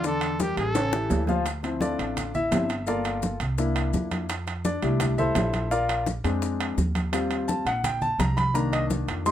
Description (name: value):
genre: latin, salsa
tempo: 169 BPM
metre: 4/4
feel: straight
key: D minor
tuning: A4 = 440 Hz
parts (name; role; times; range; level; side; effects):
- growling trumpet; melody; 0.0-1.3 s; G4 to A4; -29 LUFS; right 2 dB; none
- clear baby grand piano; accompaniment; 0.0-9.3 s; C#3 to C6; -26 LUFS; left 2 dB; none
- upright bass; bass; 0.0-9.3 s; G1 to F2; -29 LUFS; right 1 dB; none
- bongos; percussion; 0.0-9.3 s; none; -34 LUFS; left 6 dB; none
- congas; percussion; 0.0-9.3 s; none; -31 LUFS; equal; none
- maracas; percussion; 0.0-9.3 s; none; -42 LUFS; left 7 dB; none
- timbales; percussion; 0.2-9.3 s; none; -32 LUFS; right 7 dB; none
room: light reverb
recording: none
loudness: -23 LUFS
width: side -11 dB against mid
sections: 0.0-1.5 A section; 1.5-9.3 B section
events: drum fill 0.8-1.5; grand piano solo 1.5-9.3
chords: 0.0 Em7b5; 0.8 A7; 1.5 Dm7; 2.9 Gm7; 3.6 C7; 4.3 Fmaj7; 5.7 Bb7; 7.1 Eb6; 8.6 Cm7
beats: | 0.04 0.40 0.75 1.11 | 1.46 1.81 2.17 2.52 | 2.88 3.23 3.58 3.94 | 4.29 4.65 5.00 5.36 | 5.71 6.07 6.42 6.78 | 7.13 7.49 7.84 8.20 | 8.55 8.91 9.26